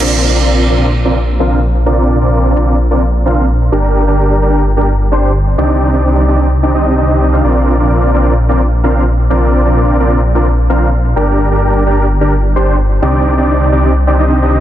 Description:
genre	EDM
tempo	129 BPM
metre	4/4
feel	straight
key	Bb major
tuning	A4 = 440 Hz
part	dense compressed supersaw	riff	0.0-14.6 s	C4 to F5	-13 LUFS	equal	low-pass filter, tape echo
part	wide detuned saw bass	bass	0.0-14.6 s	G1 to C2	-12 LUFS	equal	chorus
room	light reverb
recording	dense, heavily limited modern master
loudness	-9 LUFS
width	side -12 dB against mid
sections	0.0-14.6 A section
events	none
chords	0.0 Bbadd9; 3.7 Gm; 5.6 Cmadd9; 7.4 Bbadd9; 11.2 Gm; 13.0 Cmadd9

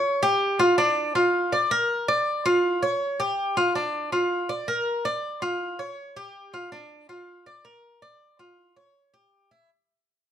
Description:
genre	latin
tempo	162 BPM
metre	4/4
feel	straight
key	D minor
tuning	A4 = 445 Hz
part	Cuban tres	solo	0.0-9.7 s	D4 to D5	-22 LUFS	equal	none
room	moderate large studio reverb, RT60 0.9 s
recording	dark, warm production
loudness	-22 LUFS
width	side -9 dB against mid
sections	0.0-9.7 A section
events	fade-out 0.0-9.7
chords	none

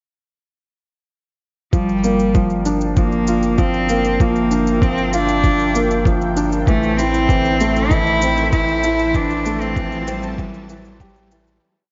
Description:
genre	piano and strings electronica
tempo	97 BPM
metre	4/4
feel	straight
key	G dorian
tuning	A4 = 439 Hz
part	clear cello	melody	1.7-11.3 s	G3 to E4	-21 LUFS	equal	low-pass filter
part	lush unison pad	sustained chords	1.7-11.6 s	E4 to A5	-32 LUFS	equal	chorus, sidechain pumping
part	felt-muted upright piano	riff	1.7-11.6 s	E3 to G4	-23 LUFS	equal	none
part	warm sub bass	bass	1.7-11.6 s	G1 to A1	-28 LUFS	equal	sidechain pumping
part	electronic kick drum	drums	1.7-11.1 s	none	-20 LUFS	equal	studio reverb
part	shaker	drums	1.7-11.6 s	none	-38 LUFS	equal	studio reverb
part	riser	sound effects	6.5-11.6 s	none	-37 LUFS	equal	none
room	moderate lush hall reverb, RT60 2.1 s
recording	nothing above 7.5 kHz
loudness	-17 LUFS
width	mono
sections	1.7-11.6 build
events	build-up 1.7-11.6; filter sweep on analog synth pad 1.7-11.6; filter sweep on cello 1.7-11.6; fade-out 8.3-11.6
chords	1.7 Gm7; 6.7 Am7

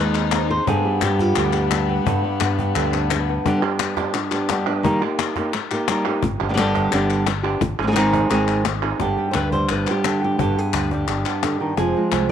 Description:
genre	flamenco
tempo	173 BPM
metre	4/4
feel	straight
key	G phrygian dominant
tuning	A4 = 440 Hz
part	flamenco guitar	melody	0.0-12.3 s	G2 to C5	-20 LUFS	equal	none
part	rich violin	second line	0.0-3.3 s	Ab3 to Eb4	-28 LUFS	left 12 dB	none
part	mellow fretless electric bass	bass	0.0-3.4, 6.2-12.3 s	F1 to G2	-25 LUFS	equal	none
part	flamenco guitar	stabs	0.1-3.5, 9.0-12.3 s	B2 to Ab4	-28 LUFS	right 13 dB	none
part	palmas hand claps	percussion	0.1-12.3 s	none	-26 LUFS	left 3 dB	none
part	cajon	percussion	0.3-12.3 s	none	-27 LUFS	left 8 dB	none
room	light reverb, studio ambience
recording	1960s-style stereo with parts hard left and right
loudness	-18 LUFS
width	side -9 dB against mid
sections	0.0-3.5 A section; 3.5-9.0 B section; 9.0-12.3 C section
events	none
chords	0.0 Ab; 0.7 G; 4.8 Eb; 6.2 G; 7.6 Ab; 9.0 G; 11.8 Fm

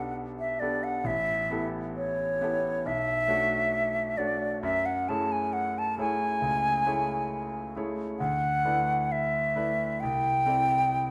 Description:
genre	classical, impressionist duo for flute and grand piano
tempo	67 BPM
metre	4/4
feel	rubato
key	unclear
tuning	A4 = 440 Hz
part	mellow silver concert flute	melody	0.0-11.1 s	C#5 to A5	-29 LUFS	equal	none
part	clear concert grand piano	accompaniment	0.0-11.1 s	A1 to D5	-34 LUFS	equal	none
room	moderate recital hall reverb, RT60 1.5 s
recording	close, detailed microphones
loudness	-28 LUFS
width	mono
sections	0.0-11.1 A section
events	none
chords	0.0 Gmaj9/B; 1.0 A9; 2.8 Bm11; 4.6 F#m9; 8.2 D69; 10.0 C69

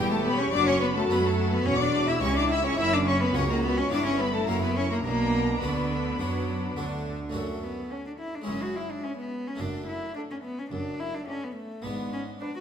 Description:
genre	classical, baroque-style concerto movement with solo episodes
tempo	106 BPM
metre	4/4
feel	straight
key	B minor, F# minor from 7.3 s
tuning	A4 = 441 Hz
part	rich chamber violin section	melody	0.0-12.6 s	F#5 to E6	-32 LUFS	left 2 dB	none
part	warm cello	melody	0.0-12.6 s	G3 to F#4	-29 LUFS	left 1 dB	none
part	rich chamber violin section	second line	0.0-12.6 s	G4 to F#5	-31 LUFS	left 4 dB	none
part	harpsichord	accompaniment	0.0-12.6 s	C#2 to B4	-36 LUFS	equal	none
part	warm chamber viola section	accompaniment	0.0-12.6 s	C#4 to C#5	-33 LUFS	left 1 dB	none
part	dark chamber double bass section	bass	0.0-12.3 s	E1 to F#2	-32 LUFS	right 3 dB	none
part	warm chamber cello section	bass	0.0-12.3 s	C#2 to F#3	-34 LUFS	right 4 dB	none
room	wet recital hall reverb, RT60 1.4 s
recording	minimal, uncompressed stereo recording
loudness	-25 LUFS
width	side -8 dB against mid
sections	0.0-7.3 A section; 7.3-12.6 B section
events	none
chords	0.0 Em; 0.5 D/F#; 1.7 C#dim/E; 2.8 F#; 3.9 Em/G; 4.5 F#5; 5.0 Bm; 7.3 F#m; 8.5 C#m/F#; 9.6 D/F#; 11.8 G#m7b5

